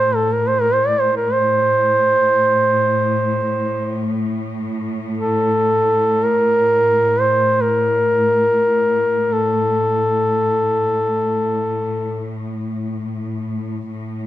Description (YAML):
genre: caucasian folk, Caucasian lament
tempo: free time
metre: none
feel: none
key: A phrygian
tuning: A4 = 442 Hz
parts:
  - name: dark duduk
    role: melody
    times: 0.0-12.4 s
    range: A4 to D5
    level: -15 LUFS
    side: equal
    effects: none
  - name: rich symphonic string section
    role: drone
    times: 0.0-14.3 s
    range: A2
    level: -23 LUFS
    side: left 1 dB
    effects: none
room: light reverb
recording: close, detailed microphones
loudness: -15 LUFS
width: side -14 dB against mid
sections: 0.0-13.9 A section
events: none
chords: none